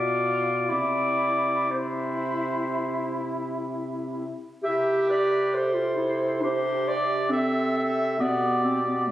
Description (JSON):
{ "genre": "classical, lyrical piece for single-reed quartet", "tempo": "59-70 BPM", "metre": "4/4", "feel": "rubato", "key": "C major", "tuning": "A4 = 440 Hz", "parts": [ { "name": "warm clarinet", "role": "melody", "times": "0.0-9.1 s", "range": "E4 to D5", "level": "-28 LUFS", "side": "left 2 dB", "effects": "none" }, { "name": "clear alto saxophone", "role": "second line", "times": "0.0-9.1 s", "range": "E4 to E5", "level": "-28 LUFS", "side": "right 2 dB", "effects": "none" }, { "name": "dark clarinet", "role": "accompaniment", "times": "0.0-9.1 s", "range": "A3 to G4", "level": "-28 LUFS", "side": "equal", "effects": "none" }, { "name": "warm bass clarinet", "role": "bass", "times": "0.0-9.1 s", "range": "B2 to C3", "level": "-33 LUFS", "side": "equal", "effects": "none" } ], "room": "moderate recital hall reverb, RT60 1.6 s", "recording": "recorded on a phone in the room, club reverb", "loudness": "-23 LUFS", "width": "side -13 dB against mid", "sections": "0.0-4.6 A section; 4.6-9.1 A section", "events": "none", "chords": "0.0 G (rootless); 0.7 C; 8.2 G/B" }